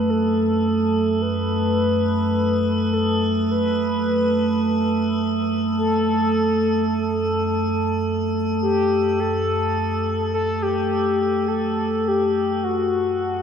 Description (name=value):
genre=dark ambient drone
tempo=free time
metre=none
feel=none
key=F# phrygian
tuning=A4 = 440 Hz
part: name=mellow horn-like synth lead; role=melody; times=0.0-13.4 s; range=F#4 to B4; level=-23 LUFS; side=left 2 dB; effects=chorus, diffuse ambient delay
part: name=deep rumbling drone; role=drone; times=0.0-13.4 s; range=F#2 to A3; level=-21 LUFS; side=right 2 dB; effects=built-in reverb
part: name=metallic inharmonic drone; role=texture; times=0.0-13.4 s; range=A4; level=-28 LUFS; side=equal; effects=chorus, built-in reverb
room=wet plate reverb, RT60 2.9 s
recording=dreamy mix soaked in reverb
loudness=-19 LUFS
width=side -7 dB against mid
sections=0.0-13.4 A section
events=none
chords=0.0 F#m